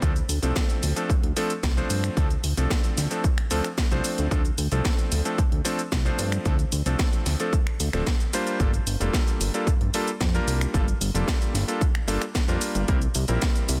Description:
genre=nu-disco, nu disco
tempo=112 BPM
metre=4/4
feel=straight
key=D minor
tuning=A4 = 440 Hz
part: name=bright electric grand piano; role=accompaniment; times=0.0-13.8 s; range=F3 to C5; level=-31 LUFS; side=equal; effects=dub echo
part: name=fat analog bass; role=bass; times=0.0-13.8 s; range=D1 to G2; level=-28 LUFS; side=equal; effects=none
part: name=electronic kick drum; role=drums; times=0.0-13.5 s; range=none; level=-26 LUFS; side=equal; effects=overdrive, studio reverb
part: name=house drum kit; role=drums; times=0.0-13.8 s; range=cabasa, finger snaps, hi-hat, snare drum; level=-33 LUFS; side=equal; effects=studio reverb
room=little or no reverb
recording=dense, heavily limited modern master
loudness=-24 LUFS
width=mono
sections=0.0-13.8 A section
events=none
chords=0.0 Dm7; 8.3 Gm9; 12.9 C7

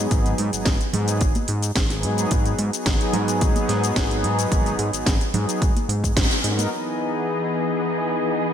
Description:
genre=nu-disco, nu disco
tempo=109 BPM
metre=4/4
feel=straight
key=G# minor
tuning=A4 = 440 Hz
part: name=warm analog pad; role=accompaniment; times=0.0-8.5 s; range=E3 to A#4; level=-24 LUFS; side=left 1 dB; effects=chorus, sidechain pumping, ping-pong delay
part: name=fat analog bass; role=bass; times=0.0-6.7 s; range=G#1 to G#2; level=-24 LUFS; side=equal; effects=sidechain pumping
part: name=electronic kick drum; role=drums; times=0.1-6.3 s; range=none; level=-22 LUFS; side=equal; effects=none
part: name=house drum kit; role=drums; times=0.1-8.5 s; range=hi-hat, shaker, snare drum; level=-26 LUFS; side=equal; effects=low-pass filter on hats, low-pass filter on snare, low-pass filter on perc
part: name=congas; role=percussion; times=0.9-6.7 s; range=none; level=-31 LUFS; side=right 4 dB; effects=none
part: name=muted studio string section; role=sustained chords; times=6.7-8.5 s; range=E3 to D#5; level=-27 LUFS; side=left 1 dB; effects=vintage 12-bit sampler grit, sidechain pumping, low-pass filter
room=moderate lush hall reverb, RT60 2.1 s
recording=bright 1980s-style digital production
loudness=-19 LUFS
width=side -9 dB against mid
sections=0.0-6.7 A section; 6.7-8.5 B section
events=band accent 6.2; filter sweep on drum 6.7-8.5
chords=0.0 G#m7; 6.7 Emaj7

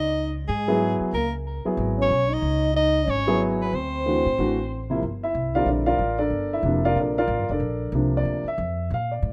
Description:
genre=jazz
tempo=185 BPM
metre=4/4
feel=swing 61% on 8ths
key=G dorian from 5.0 s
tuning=A4 = 441 Hz
part: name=breathy soprano saxophone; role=melody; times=0.0-4.9 s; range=Ab4 to Eb5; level=-29 LUFS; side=equal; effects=plate reverb, analog delay
part: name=breathy trombone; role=second line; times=0.0-4.9 s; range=Ab3 to Eb4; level=-29 LUFS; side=equal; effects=plate reverb
part: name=upright bass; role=bass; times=0.0-9.3 s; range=F1 to Bb2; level=-30 LUFS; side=equal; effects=none
part: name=warm concert grand piano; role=accompaniment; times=0.7-9.3 s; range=C3 to F5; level=-26 LUFS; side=equal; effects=plate reverb
room=moderate small room reverb, RT60 0.5 s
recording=rough home demo mix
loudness=-24 LUFS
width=mono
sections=0.0-5.0 A section; 5.0-9.3 B section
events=none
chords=0.0 Dbm11; 3.7 D7; 5.0 Gm9

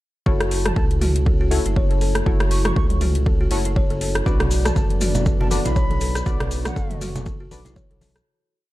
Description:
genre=afro house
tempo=120 BPM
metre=4/4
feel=swing 57% on 16ths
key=F# minor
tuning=A4 = 438 Hz
part: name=dark analog pad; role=sustained chords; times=1.0-8.2 s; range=F#3 to C#6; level=-31 LUFS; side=equal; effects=chorus, sidechain pumping
part: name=buzzing kalimba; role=arpeggios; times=0.3-8.1 s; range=E4 to C#5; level=-29 LUFS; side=left 1 dB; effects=sidechain pumping, digital delay
part: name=deep mellow chord stab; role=stabs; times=0.3-7.6 s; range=D4 to D5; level=-31 LUFS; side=left 3 dB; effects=chorus, sidechain pumping, digital delay
part: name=smooth gliding synth bass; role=bass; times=0.3-8.2 s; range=F#1 to C#2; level=-23 LUFS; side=equal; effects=sidechain pumping
part: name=electronic kick drum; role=drums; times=0.3-7.9 s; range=none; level=-22 LUFS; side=equal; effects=overdrive
part: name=deep house drum kit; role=drums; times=0.4-8.2 s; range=hi-hat, rim click, toms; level=-27 LUFS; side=equal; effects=overdrive
part: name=reedy concert flute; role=melody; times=0.7-7.0 s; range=F#5 to C#6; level=-34 LUFS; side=right 1 dB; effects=digital delay
part: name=maracas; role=percussion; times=4.3-8.2 s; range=none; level=-35 LUFS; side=left 3 dB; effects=none
part: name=congas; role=percussion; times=4.4-8.1 s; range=none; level=-28 LUFS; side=equal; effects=none
room=small room reverb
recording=dark, warm production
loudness=-18 LUFS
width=side -17 dB against mid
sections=0.3-8.3 drop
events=drop 0.3-8.3; fade-out 5.6-8.3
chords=0.3 F#m7; 4.3 Bm

